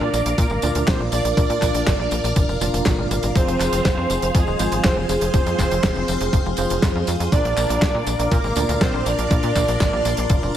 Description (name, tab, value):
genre	italo disco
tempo	121 BPM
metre	4/4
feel	straight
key	unclear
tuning	A4 = 440 Hz
part	analog synth brass	melody	0.0-10.6 s	Ab3 to D5	-24 LUFS	right 2 dB	chorus, vintage 12-bit sampler grit, digital delay
part	string machine, full ensemble	sustained chords	0.0-10.6 s	Ab4 to D6	-26 LUFS	equal	phaser, ensemble chorus
part	tine electric piano	stabs	0.0-10.5 s	Bb2 to D5	-27 LUFS	right 2 dB	medium stereo tremolo
part	tight sequencer bass	bass	0.0-10.5 s	Eb1 to Bb2	-24 LUFS	equal	tube saturation
part	damped 70s drum kit	drums	0.1-10.6 s	handclaps, hi-hat, snare drum, tambourine	-26 LUFS	right 1 dB	studio reverb, gated reverb
part	electronic kick drum	drums	0.4-10.4 s	none	-20 LUFS	equal	overdrive, studio reverb
room	light reverb, small room ambience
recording	none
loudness	-17 LUFS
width	side -10 dB against mid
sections	0.0-10.6 A section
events	none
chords	0.0 Bb; 3.4 Fm; 7.3 Bb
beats	0.38 0.88 | 1.37 1.87 2.37 2.86 | 3.36 3.85 4.35 4.84 | 5.34 5.84 6.33 6.83 | 7.32 7.82 8.32 8.81 | 9.31 9.80 10.30